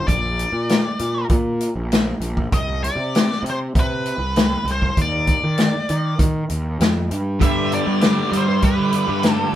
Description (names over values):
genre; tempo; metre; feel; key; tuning
psychedelic rock; 98 BPM; 4/4; straight; unclear; A4 = 442 Hz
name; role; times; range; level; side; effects
octave-fuzz lead guitar; melody; 0.0-9.6 s; B4 to E5; -24 LUFS; equal; wah, distortion
fuzz picked electric bass; bass; 0.1-9.6 s; Bb1 to G3; -22 LUFS; equal; overdrive
vintage drum kit; drums; 0.1-9.4 s; hi-hat, kick drum, snare drum; -19 LUFS; equal; none
combo organ; sustained chords; 7.4-9.6 s; G4 to B5; -31 LUFS; right 6 dB; none
thick fuzz guitar; riff; 7.4-9.5 s; G2 to G3; -22 LUFS; equal; distortion, phaser
room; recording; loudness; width
light reverb; band playing live in one room; -17 LUFS; side -12 dB against mid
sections
0.0-9.6 A section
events
none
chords
0.1 Bb; 2.5 Cmaj7(no3); 5.0 N.C.; 7.4 G6